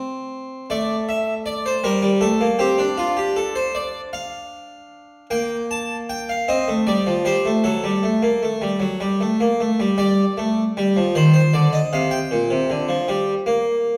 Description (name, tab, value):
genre	classical, baroque-style two-part invention for harpsichord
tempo	52 BPM (dotted quarters)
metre	6/8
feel	straight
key	D minor, G minor from 5.3 s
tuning	A4 = 440 Hz
part	harpsichord	solo	0.0-14.0 s	Bb2 to A5	-20 LUFS	equal	none
room	wet recital hall reverb, RT60 1.7 s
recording	heard from further back in the room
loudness	-20 LUFS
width	mono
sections	0.0-5.3 A section; 5.3-10.0 B section; 10.0-14.0 C section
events	none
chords	0.0 Am/C; 0.7 D5/A; 1.9 Gm; 3.0 Dm; 5.3 Bb5; 6.5 Cm; 7.6 F#m; 10.0 G5; 11.2 Cm; 12.3 Gm/Bb